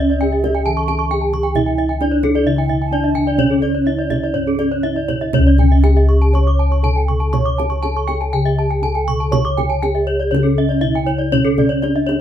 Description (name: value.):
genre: Balinese gamelan.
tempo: 120-134 BPM.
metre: 4/4.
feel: straight.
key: C# pelog.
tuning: A4 = 440 Hz.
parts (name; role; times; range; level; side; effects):
gamelan-type bronze metallophone; melody; 0.0-12.2 s; C#4 to C#5; -20 LUFS; right 1 dB; none.
mellow bansuri; second line; 0.0-4.5 s; C#5 to A5-42c; -31 LUFS; right 9 dB; none.
gamelan-type bronze metallophone; arpeggios; 0.0-12.2 s; A4-40c to D6; -23 LUFS; left 4 dB; none.
gamelan-type bossed gongs; bass; 0.0-12.2 s; C#2 to C#5; -17 LUFS; left 1 dB; none.
kendang; percussion; 0.0-12.2 s; none; -24 LUFS; right 4 dB; none.
gamelan-type bronze metallophone; arpeggios; 0.1-12.1 s; A4-40c to C#6; -25 LUFS; right 6 dB; none.
room: moderate studio reverb, RT60 0.5 s.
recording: band playing live in one room.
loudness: -14 LUFS.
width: side -10 dB against mid.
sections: 0.0-5.3 A section; 5.3-12.2 B section.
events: none.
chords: none.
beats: 0.22 0.67 1.11 | 1.56 2.01 2.46 2.92 | 3.39 3.87 4.35 4.84 | 5.33 5.83 6.33 6.83 | 7.33 7.83 8.34 8.84 | 9.34 9.84 10.34 10.84 | 11.34 11.84.